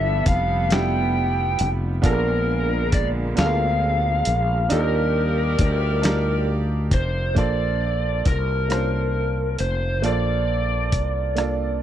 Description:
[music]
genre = slow six-eight R&B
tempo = 45 BPM (dotted quarters)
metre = 6/8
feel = straight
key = Bb major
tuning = A4 = 439 Hz
[part]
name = lead guitar through a small cranked amp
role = melody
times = 0.0-11.8 s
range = Bb4 to G5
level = -24 LUFS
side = left 1 dB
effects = overdrive
[part]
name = clear concert grand piano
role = accompaniment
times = 0.0-11.8 s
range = Bb3 to A5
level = -28 LUFS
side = right 5 dB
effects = none
[part]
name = rich chamber string section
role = sustained chords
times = 0.0-7.3 s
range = Bb2 to D5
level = -31 LUFS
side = equal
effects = none
[part]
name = fretless electric bass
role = bass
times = 0.0-11.8 s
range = F1 to Eb2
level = -23 LUFS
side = equal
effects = none
[part]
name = dusty soul sampler-style drum kit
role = drums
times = 0.3-11.6 s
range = hi-hat, kick drum, rim click, snare drum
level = -21 LUFS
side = equal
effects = none
[sound]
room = little or no reverb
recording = dry, close 1970s-style studio recording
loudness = -19 LUFS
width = side -11 dB against mid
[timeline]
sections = 0.0-7.4 A section; 7.4-11.8 B section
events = none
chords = 0.0 G13; 2.0 Bb7b9; 4.7 Ebmaj7; 7.4 Bbmaj9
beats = 0.70 | 2.03 3.37 | 4.70 6.03 | 7.37 8.70 | 10.03 11.37

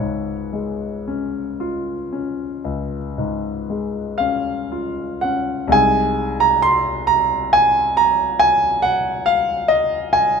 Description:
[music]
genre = classical, romantic nocturne for solo piano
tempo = 37-48 BPM (dotted quarters)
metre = 12/8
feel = rubato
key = Db major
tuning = A4 = 440 Hz
[part]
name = clear grand piano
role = solo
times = 0.0-10.4 s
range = C2 to C6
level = -17 LUFS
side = equal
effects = none
[sound]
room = moderate large studio reverb, RT60 1.3 s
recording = close, detailed microphones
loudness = -17 LUFS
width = side -6 dB against mid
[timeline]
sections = 0.0-5.7 A section; 5.7-10.4 B section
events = none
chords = 0.0 Db; 5.7 Ab/C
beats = 1.06 2.65 4.20 | 5.74 7.10 8.43 9.72

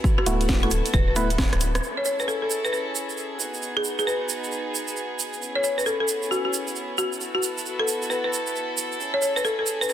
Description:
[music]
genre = UK garage, two-step garage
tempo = 134 BPM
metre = 4/4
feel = swing 64% on 16ths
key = unclear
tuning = A4 = 441 Hz
[part]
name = warm studio violin section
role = sustained chords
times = 0.0-9.9 s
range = B3 to A4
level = -30 LUFS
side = equal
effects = sidechain pumping
[part]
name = electronic kick drum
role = drums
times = 0.0-1.5 s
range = none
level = -22 LUFS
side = equal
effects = overdrive
[part]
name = tube shaker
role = percussion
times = 0.0-9.9 s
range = none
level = -30 LUFS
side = right 7 dB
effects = none
[part]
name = folk marimba with hard mallets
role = melody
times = 0.2-9.9 s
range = F#4 to C#5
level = -26 LUFS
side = left 1 dB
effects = dub echo
[part]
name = house drum kit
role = drums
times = 0.2-1.8 s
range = hi-hat, rim click, snare drum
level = -29 LUFS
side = equal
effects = overdrive, low-pass filter on snare, low-pass filter on hats, low-pass filter on room
[part]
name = percussive organ stab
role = stabs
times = 0.3-1.3 s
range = A3 to B4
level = -28 LUFS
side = right 1 dB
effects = chorus, dub echo
[part]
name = soft dub sub bass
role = bass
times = 0.3-1.8 s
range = D1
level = -25 LUFS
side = equal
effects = tube saturation, sidechain pumping
[sound]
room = light reverb, digital ambience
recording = dense, heavily limited modern master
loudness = -22 LUFS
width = side -10 dB against mid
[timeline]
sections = 0.0-1.8 A section; 1.8-9.9 B section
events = drum fill 1.2-1.8; band accent 1.7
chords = 0.0 D69; 1.8 Amaj7/C#; 3.4 G#m7; 5.4 Bsus4; 7.2 B7sus4; 9.0 Amaj7/C#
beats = | 0.04 0.49 0.94 1.39 | 1.83 2.28 2.73 3.18 | 3.62 4.07 4.52 4.97 | 5.42 5.86 6.31 6.76 | 7.21 7.65 8.10 8.55 | 9.00 9.45 9.89

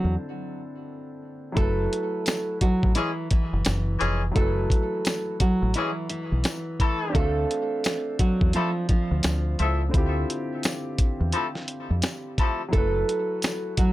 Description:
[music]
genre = hip hop, boom-bap hip-hop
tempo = 86 BPM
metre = 4/4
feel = swing 61% on 16ths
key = F# minor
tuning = A4 = 439 Hz
[part]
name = nylon-string guitar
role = melody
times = 0.0-13.9 s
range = E3 to A4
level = -28 LUFS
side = right 2 dB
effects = high-pass filter, low-pass filter, digital delay
[part]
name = warm grand piano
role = accompaniment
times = 0.0-13.9 s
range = D3 to F5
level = -32 LUFS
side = left 1 dB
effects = cassette tape, high-pass filter, low-pass filter
[part]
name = deep dub fingered electric bass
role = bass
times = 0.0-13.0 s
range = E#1 to F2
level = -25 LUFS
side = equal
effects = none
[part]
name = dusty soul sampler-style drum kit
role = drums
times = 1.6-13.9 s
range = hi-hat, kick drum, snare drum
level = -24 LUFS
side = equal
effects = none
[part]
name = tambourine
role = percussion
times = 2.3-13.6 s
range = none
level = -38 LUFS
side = left 4 dB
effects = none
[part]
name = dark horn section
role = stabs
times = 3.0-12.6 s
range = E3 to E5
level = -28 LUFS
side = left 3 dB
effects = high-pass filter, low-pass filter, digital delay
[sound]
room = little or no reverb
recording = none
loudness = -22 LUFS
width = side -16 dB against mid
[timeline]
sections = 0.0-12.7 A section; 12.7-13.9 A section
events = break 0.2-1.6, 9.9-12.7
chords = 0.0 Dm9; 1.6 F#m7; 7.1 Dm11; 12.7 F#m7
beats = 0.17 0.87 | 1.57 2.27 2.96 3.66 | 4.36 5.06 5.75 6.45 | 7.15 7.85 8.54 9.24 | 9.94 10.64 11.34 12.03 | 12.73 13.43

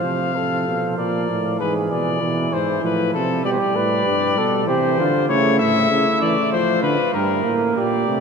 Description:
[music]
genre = classical, imitative canzona for brass ensemble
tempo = 97 BPM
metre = 3/4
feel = straight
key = unclear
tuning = A4 = 440 Hz
[part]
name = clear trumpet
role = melody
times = 0.0-8.2 s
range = A4 to F5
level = -21 LUFS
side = left 6 dB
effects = none
[part]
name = warm flugelhorn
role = second line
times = 0.0-8.2 s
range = E4 to C5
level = -24 LUFS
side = right 5 dB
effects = none
[part]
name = clear trombone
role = accompaniment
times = 0.0-8.2 s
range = E3 to Bb3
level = -24 LUFS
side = right 1 dB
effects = none
[part]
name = mellow bass trombone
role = bass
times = 0.0-8.2 s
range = G2 to F3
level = -24 LUFS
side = right 2 dB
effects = none
[sound]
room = wet cathedral reverb, RT60 6.4 s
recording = none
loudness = -17 LUFS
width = side -5 dB against mid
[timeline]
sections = 0.0-8.2 A section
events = none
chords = 0.0 F; 1.0 Bb; 1.6 E/G#; 2.8 F/A; 3.5 G; 4.7 C; 5.3 A; 6.5 Dm/F; 7.2 Edim/G (rootless)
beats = 0.35 0.98 | 1.61 2.22 2.84 | 3.46 4.07 4.69 | 5.30 5.92 6.53 | 7.15 7.77

